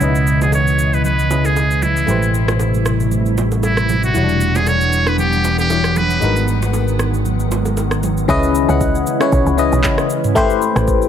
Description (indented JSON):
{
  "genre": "amapiano",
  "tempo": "116 BPM",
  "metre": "4/4",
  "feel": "swing 55% on 16ths",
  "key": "unclear",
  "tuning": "A4 = 440 Hz",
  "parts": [
    { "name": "trumpet with metal mute", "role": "melody", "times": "0.0-6.5 s", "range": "E4 to C#5", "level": "-19 LUFS", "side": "right 2 dB", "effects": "low-pass filter, ping-pong delay" },
    { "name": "barking FM electric piano", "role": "accompaniment", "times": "0.0-11.1 s", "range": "C#3 to F#5", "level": "-19 LUFS", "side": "left 4 dB", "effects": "chorus, low-pass filter" },
    { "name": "glassy FM pad", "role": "sustained chords", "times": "0.0-11.1 s", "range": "B2 to F#5", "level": "-21 LUFS", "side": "equal", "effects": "ensemble chorus, built-in reverb, sidechain pumping, low-pass filter" },
    { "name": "fingered electric bass", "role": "bass", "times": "0.0-8.2 s", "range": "E1 to C#2", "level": "-18 LUFS", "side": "equal", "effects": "none" },
    { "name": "afro-pop drum kit", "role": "drums", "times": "0.0-11.1 s", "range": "handclaps, kick drum, rim click, shaker, toms", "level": "-22 LUFS", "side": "right 1 dB", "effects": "overdrive" },
    { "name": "congas and bongos", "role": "percussion", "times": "0.0-8.2 s", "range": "none", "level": "-27 LUFS", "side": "right 5 dB", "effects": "none" },
    { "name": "woody log drum bass", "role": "bass", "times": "8.3-11.1 s", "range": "A1 to C#2", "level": "-18 LUFS", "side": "right 1 dB", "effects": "none" }
  ],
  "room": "digital ambience",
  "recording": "none",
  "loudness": "-13 LUFS",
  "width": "side -9 dB against mid",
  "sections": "0.0-8.3 A section; 8.3-11.1 B section",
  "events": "filter sweep 0.0-8.3; drop 8.3-11.1",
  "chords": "0.0 C#m9; 2.1 Am9; 4.2 Em9; 6.2 G#m9; 8.3 C#m9; 10.4 Am9",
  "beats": "| 0.01 0.53 1.05 1.56 | 2.08 2.60 3.12 3.63 | 4.15 4.67 5.18 5.70 | 6.22 6.74 7.25 7.77 | 8.29 8.81 9.32 9.84 | 10.36 10.88"
}